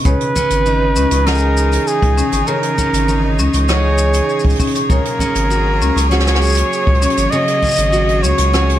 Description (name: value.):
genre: folktronica.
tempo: 99 BPM.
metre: 4/4.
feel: straight.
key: C# dorian.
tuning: A4 = 438 Hz.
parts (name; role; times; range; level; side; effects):
marimba with medium hard mallets; second line; 0.0-8.7 s; C#4 to C#6; -24 LUFS; left 5 dB; ping-pong delay, plate reverb.
picked steel-string acoustic guitar; arpeggios; 0.0-8.8 s; C#3 to B4; -20 LUFS; right 2 dB; digital delay, plate reverb.
jazz brush drum kit; drums; 0.0-8.8 s; hi-hat, rim click, shaker; -23 LUFS; equal; none.
breathy flugelhorn; melody; 0.1-8.8 s; G#4 to D#5; -18 LUFS; equal; digital delay, plate reverb.
bright string quartet; sustained chords; 0.1-8.8 s; E3 to C#5; -25 LUFS; right 2 dB; plate reverb.
round analog bass; bass; 0.1-8.8 s; G#1 to C#2; -16 LUFS; equal; none.
kick drum; drums; 0.1-7.7 s; none; -20 LUFS; equal; none.
room: light reverb.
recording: none.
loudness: -12 LUFS.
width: side -12 dB against mid.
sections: 0.0-8.8 A section.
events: none.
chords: 0.1 C#madd9; 4.9 F#add9.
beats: | 0.05 0.66 1.26 1.87 | 2.48 3.08 3.69 4.29 | 4.90 5.51 6.11 6.72 | 7.33 7.93 8.54.